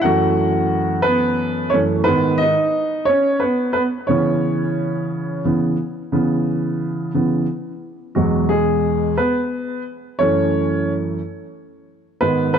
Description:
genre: pop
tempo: 59 BPM (dotted quarters)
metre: 6/8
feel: straight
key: C# minor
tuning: A4 = 442 Hz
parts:
  - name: clear baby grand piano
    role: solo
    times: 0.0-12.6 s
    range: E2 to F#5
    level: -17 LUFS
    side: right 1 dB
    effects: none
room: moderate plate reverb, RT60 2.5 s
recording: worn, warbling old tape, cassette tape, warbly pitch drift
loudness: -17 LUFS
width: side -8 dB against mid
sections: 0.0-6.1 A section; 6.1-8.2 B section; 8.2-12.6 C section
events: grand piano solo 0.0-6.1, 6.1-8.2, 8.2-12.6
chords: 0.0 F#m7; 2.1 G#m; 4.1 C#m7; 8.2 E; 10.2 F#m7

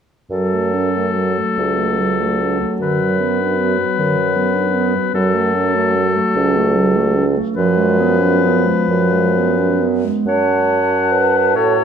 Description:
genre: classical, slow romantic movement for wind quintet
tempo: 42-53 BPM (dotted quarters)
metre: 6/8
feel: rubato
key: F# minor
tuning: A4 = 444 Hz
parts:
  - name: warm oboe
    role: second line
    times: 0.3-11.8 s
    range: A4 to F#5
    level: -20 LUFS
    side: left 6 dB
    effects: none
  - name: mellow French horn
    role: accompaniment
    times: 0.3-11.8 s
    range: E#3 to F#4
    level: -22 LUFS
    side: left 3 dB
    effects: none
  - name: warm clarinet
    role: accompaniment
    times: 0.3-11.8 s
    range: D3 to C#5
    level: -20 LUFS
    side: right 6 dB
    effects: none
  - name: mellow bassoon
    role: bass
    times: 0.3-11.8 s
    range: C#2 to A2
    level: -18 LUFS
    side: right 2 dB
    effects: none
  - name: mellow silver concert flute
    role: melody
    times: 10.3-11.8 s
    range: A5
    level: -21 LUFS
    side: left 8 dB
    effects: none
room: wet recital hall reverb, RT60 1.5 s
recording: none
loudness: -14 LUFS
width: side -7 dB against mid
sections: 0.3-10.3 A section; 10.3-11.8 B section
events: none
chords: 0.3 F#m; 2.8 Bm/F#; 5.1 F#m; 7.6 C#7/F#; 10.3 F#m

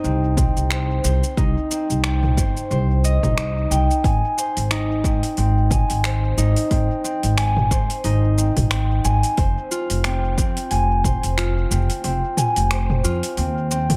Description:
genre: organic downtempo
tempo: 90 BPM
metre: 4/4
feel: swing 57% on 16ths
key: unclear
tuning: A4 = 440 Hz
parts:
  - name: concert harp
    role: arpeggios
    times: 0.0-14.0 s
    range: C4 to Ab5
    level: -26 LUFS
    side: equal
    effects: analog delay
  - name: upright bass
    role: bass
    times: 0.0-14.0 s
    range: F1 to Ab2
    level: -22 LUFS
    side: equal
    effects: sidechain pumping
  - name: deep house drum kit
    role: drums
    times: 0.0-14.0 s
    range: finger snaps, hi-hat, shaker, toms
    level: -28 LUFS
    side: equal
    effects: overdrive
  - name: electronic kick drum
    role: drums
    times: 0.4-11.2 s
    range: none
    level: -24 LUFS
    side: equal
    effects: overdrive
room: light reverb, digital ambience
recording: echo-heavy mix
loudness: -20 LUFS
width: mono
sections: 0.0-14.0 A section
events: kick drops out 12.0-14.0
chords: 0.0 Cm; 4.0 Ab; 9.4 Fm

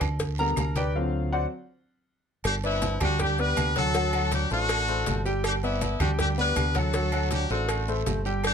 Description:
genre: latin, salsa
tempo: 160 BPM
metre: 4/4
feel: straight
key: G major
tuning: A4 = 436 Hz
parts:
  - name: fingered electric bass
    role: bass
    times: 0.0-8.5 s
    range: G1 to D2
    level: -28 LUFS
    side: right 1 dB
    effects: none
  - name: agogo bells and timbales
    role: percussion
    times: 0.0-8.5 s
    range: none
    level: -37 LUFS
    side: right 6 dB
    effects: none
  - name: claves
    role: percussion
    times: 0.0-8.5 s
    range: none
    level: -41 LUFS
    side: right 9 dB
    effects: none
  - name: congas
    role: percussion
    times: 0.0-8.5 s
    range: none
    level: -34 LUFS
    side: left 1 dB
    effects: none
  - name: cowbell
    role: percussion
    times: 0.0-8.5 s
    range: none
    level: -34 LUFS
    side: left 1 dB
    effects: none
  - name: guiro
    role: percussion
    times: 0.0-8.5 s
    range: none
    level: -43 LUFS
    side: right 9 dB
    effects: none
  - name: maracas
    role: percussion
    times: 0.0-8.5 s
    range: none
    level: -44 LUFS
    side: left 6 dB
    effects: none
  - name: clear grand piano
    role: accompaniment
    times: 0.4-8.5 s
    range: D3 to Bb5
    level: -29 LUFS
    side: left 2 dB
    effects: none
  - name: brilliant horn section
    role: melody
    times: 2.5-8.5 s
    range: B3 to B4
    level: -28 LUFS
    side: left 1 dB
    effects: none
room: light reverb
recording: close, detailed microphones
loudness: -24 LUFS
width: side -7 dB against mid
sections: 0.0-2.4 A section; 2.4-8.5 B section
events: grand piano solo 0.0-2.4; stop 0.9-2.4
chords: 0.0 G; 0.9 D7; 2.4 G; 3.9 D7; 5.4 G; 6.9 D7

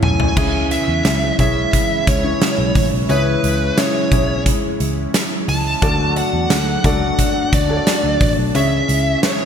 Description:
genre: 1980s-style pop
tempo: 88 BPM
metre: 4/4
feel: straight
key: C# phrygian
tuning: A4 = 440 Hz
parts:
  - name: smooth overdriven lead guitar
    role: melody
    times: 0.0-9.5 s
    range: B4 to A5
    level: -21 LUFS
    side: equal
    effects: digital delay
  - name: warm grand piano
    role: accompaniment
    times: 0.0-9.5 s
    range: C#3 to D5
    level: -22 LUFS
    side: left 2 dB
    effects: analog chorus
  - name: chorused pulse-width pad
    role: sustained chords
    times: 0.0-9.5 s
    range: C#3 to F#4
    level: -23 LUFS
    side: equal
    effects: none
  - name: vintage muted picked electric bass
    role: bass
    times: 0.0-9.1 s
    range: A1 to E2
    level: -21 LUFS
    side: equal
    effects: none
  - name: big rock drum kit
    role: drums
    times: 0.0-9.4 s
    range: crash cymbal, hi-hat, kick drum, snare drum, tambourine, toms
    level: -19 LUFS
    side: equal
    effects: none
room: moderate lush hall reverb, RT60 1.9 s, studio ambience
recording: bright 1980s-style digital production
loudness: -14 LUFS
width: side -8 dB against mid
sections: 0.0-9.5 A section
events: drum fill 0.0-0.4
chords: 0.4 C#m; 5.8 D; 8.6 C#m

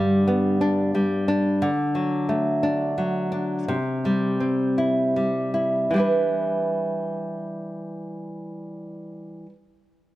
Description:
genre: pop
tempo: 50-59 BPM (dotted quarters)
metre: 6/8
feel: straight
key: E minor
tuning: A4 = 441 Hz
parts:
  - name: nylon-string guitar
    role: accompaniment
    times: 0.0-9.5 s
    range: G2 to B4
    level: -22 LUFS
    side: equal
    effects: none
room: moderate plate reverb, RT60 2.6 s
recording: none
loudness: -21 LUFS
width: side -16 dB against mid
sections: 0.0-5.9 A section; 5.9-10.2 B section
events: slowing down 1.6-5.9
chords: 0.0 G; 1.6 D; 3.7 C; 5.9 Em7

